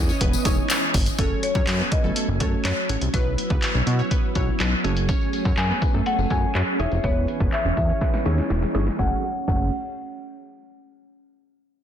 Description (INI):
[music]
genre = dance-pop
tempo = 123 BPM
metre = 4/4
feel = straight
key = F# dorian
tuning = A4 = 441 Hz
[part]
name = glassy wavetable pluck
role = accompaniment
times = 0.0-9.7 s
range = F#3 to A4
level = -33 LUFS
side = equal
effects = chorus, sidechain pumping
[part]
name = ensemble organ-string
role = sustained chords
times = 0.0-9.2 s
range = E3 to G#5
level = -30 LUFS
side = equal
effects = ensemble chorus, sidechain pumping
[part]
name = fat analog bass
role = bass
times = 0.0-9.7 s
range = E1 to B2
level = -24 LUFS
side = equal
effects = sidechain pumping
[part]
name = glassy wavetable pluck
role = melody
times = 0.1-9.7 s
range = A3 to C#5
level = -32 LUFS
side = right 5 dB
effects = chorus, tape echo
[part]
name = tambourine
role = percussion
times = 0.1-1.2, 5.1-9.7 s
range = none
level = -34 LUFS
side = left 10 dB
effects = none
[part]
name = punchy analog drum machine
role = drums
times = 0.2-9.6 s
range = crash cymbal, handclaps, hi-hat, kick drum, snare drum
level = -23 LUFS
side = equal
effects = none
[part]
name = marimba with medium hard mallets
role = melody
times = 1.2-9.7 s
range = A4 to G#5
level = -29 LUFS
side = left 3 dB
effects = tape echo
[sound]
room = little or no reverb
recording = dense, heavily limited modern master, low-pass filter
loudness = -20 LUFS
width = side -9 dB against mid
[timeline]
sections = 0.0-1.2 A section; 1.2-9.0 B section; 9.0-10.9 C section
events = drop 0.0-1.2; filter sweep 1.2-9.0; drum fill 8.0-9.0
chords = 0.0 C#madd9/E; 1.2 F#madd9; 3.1 Bsus4; 4.8 F#madd9; 6.8 C#madd9/E; 9.0 F#madd9